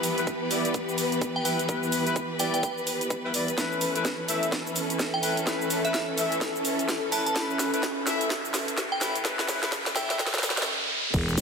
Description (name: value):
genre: bass house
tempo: 127 BPM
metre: 4/4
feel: swing 61% on 16ths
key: unclear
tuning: A4 = 440 Hz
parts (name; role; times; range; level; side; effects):
- clear symphonic string section; sustained chords; 0.0-11.4 s; E3 to B4; -32 LUFS; equal; sidechain pumping
- warm horn section; stabs; 0.0-10.2 s; G3 to E5; -32 LUFS; left 3 dB; sidechain pumping, digital delay
- garage drum kit; drums; 0.0-11.4 s; crash cymbal, hi-hat, shaker, snare drum; -29 LUFS; equal; none
- warbly tape-like pad; texture; 0.0-11.4 s; B3 to B5; -33 LUFS; equal; chorus, built-in reverb, sidechain pumping
- electronic kick drum; drums; 0.3-11.3 s; none; -31 LUFS; equal; high-pass filter on kick
- glassy synth bell; melody; 1.4-10.2 s; E5 to A5; -32 LUFS; right 2 dB; chorus, digital delay
- riser and sub drop; sound effects; 6.5-11.4 s; none; -34 LUFS; right 1 dB; none
- growling FM bass; bass; 11.1-11.4 s; E1; -26 LUFS; equal; sidechain pumping
- growl bass; bass; 11.4 s; G1; -25 LUFS; left 1 dB; chorus, sidechain pumping
room: moderate lush hall reverb, RT60 2.0 s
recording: high-pass filter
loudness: -24 LUFS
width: side -5 dB against mid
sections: 0.0-11.1 A section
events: build-up 0.0-11.1; drum fill 3.6-10.7; riser 6.5-11.1; impact 11.1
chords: 0.0 Em; 3.6 Aadd9